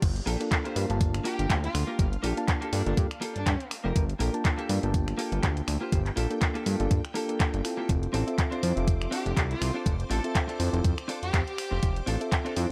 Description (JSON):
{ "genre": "nu-disco, nu disco", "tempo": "122 BPM", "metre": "4/4", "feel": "swing 56% on 16ths", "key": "unclear", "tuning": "A4 = 440 Hz", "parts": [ { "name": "string machine, full ensemble", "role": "sustained chords", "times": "0.0-12.7 s", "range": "C5 to D6", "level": "-47 LUFS", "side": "equal", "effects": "none" }, { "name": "fat analog bass", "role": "bass", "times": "0.0-12.7 s", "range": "F1 to G2", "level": "-31 LUFS", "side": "equal", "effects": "sidechain pumping" }, { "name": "electronic kick drum", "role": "drums", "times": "0.0-12.4 s", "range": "none", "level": "-29 LUFS", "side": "equal", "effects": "none" }, { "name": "house drum kit", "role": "drums", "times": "0.0-12.7 s", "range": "crash cymbal, finger snaps, handclaps, hi-hat", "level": "-36 LUFS", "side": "equal", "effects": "none" }, { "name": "mellow reed electric piano", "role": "accompaniment", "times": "0.3-12.7 s", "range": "Bb3 to A5", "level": "-35 LUFS", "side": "equal", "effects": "tape echo" }, { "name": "direct-recorded clean electric guitar", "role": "riff", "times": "0.3-12.7 s", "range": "Bb3 to C5", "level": "-38 LUFS", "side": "equal", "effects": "lush chorus" }, { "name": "rich chamber violin section", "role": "melody", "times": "1.3-3.7, 9.1-12.0 s", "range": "D4 to A4", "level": "-40 LUFS", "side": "equal", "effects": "vintage 12-bit sampler grit, tape echo" } ], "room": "little or no reverb", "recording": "none", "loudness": "-28 LUFS", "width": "mono", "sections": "0.0-12.7 A section", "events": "drop 0.0-12.7", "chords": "0.0 Dm7" }